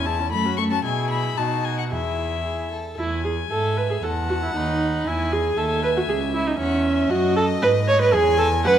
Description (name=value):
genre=quick classical-period movement for string quartet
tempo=116 BPM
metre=2/4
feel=rubato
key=E major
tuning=A4 = 439 Hz
part: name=rich violin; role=melody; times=0.0-8.8 s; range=D#5 to C#6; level=-29 LUFS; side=left 10 dB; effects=none
part: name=warm violin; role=second line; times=0.0-8.8 s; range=E4 to G#5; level=-29 LUFS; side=left 4 dB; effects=none
part: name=warm viola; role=accompaniment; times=0.0-8.8 s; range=A3 to C#5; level=-22 LUFS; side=right 2 dB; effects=none
part: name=rich cello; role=bass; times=0.0-8.8 s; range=C#2 to B2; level=-26 LUFS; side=right 2 dB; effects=none
room=moderate recital hall reverb, RT60 1.8 s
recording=none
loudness=-19 LUFS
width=side -10 dB against mid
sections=0.0-3.0 A section; 3.0-8.8 B section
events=none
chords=0.3 F#m; 0.9 E/B; 1.4 B7; 1.9 E; 4.0 B7/E; 5.1 E; 6.1 C#m; 7.1 D#dim/F#; 7.6 G#m; 8.1 Eadd11